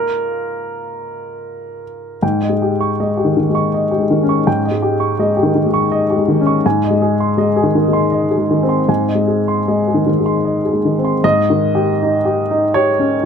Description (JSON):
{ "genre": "neoclassical minimalist piano", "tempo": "75-84 BPM", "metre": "3/4", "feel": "rubato", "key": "unclear", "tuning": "A4 = 440 Hz", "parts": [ { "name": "warm baby grand piano", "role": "solo", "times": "0.0-13.3 s", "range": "Ab2 to Db6", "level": "-14 LUFS", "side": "left 1 dB", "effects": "none" } ], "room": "little or no reverb", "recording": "close, detailed microphones", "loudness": "-13 LUFS", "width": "side -7 dB against mid", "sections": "0.0-2.2 A section; 2.2-11.2 B section; 11.2-13.3 C section", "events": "none", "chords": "0.0 Bb5; 2.2 Eb7/Ab; 6.6 Ab; 11.2 Eb7/Ab" }